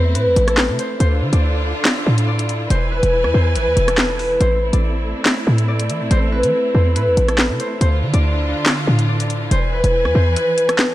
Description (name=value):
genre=hip hop, drill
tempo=141 BPM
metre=4/4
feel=half-time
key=A harmonic minor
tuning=A4 = 441 Hz
part: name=concert harp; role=melody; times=0.0-10.9 s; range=A4 to E5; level=-20 LUFS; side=equal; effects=low-pass filter
part: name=clear symphonic string section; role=sustained chords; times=0.0-10.9 s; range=D3 to G#5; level=-24 LUFS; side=right 1 dB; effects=none
part: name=short 808-style bass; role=bass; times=0.0-10.4 s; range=E1 to E3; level=-17 LUFS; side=equal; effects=none
part: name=drill drum kit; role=drums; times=0.2-10.9 s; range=handclaps, hi-hat, rim click, snare drum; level=-19 LUFS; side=equal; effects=overdrive, vintage 12-bit sampler grit
room=small room ambience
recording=none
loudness=-14 LUFS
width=side -15 dB against mid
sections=0.0-10.9 A section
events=kick muted 10.4-10.9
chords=0.0 Am; 1.0 Dmadd9; 2.7 E; 4.4 Am; 7.8 Dmadd9; 9.5 E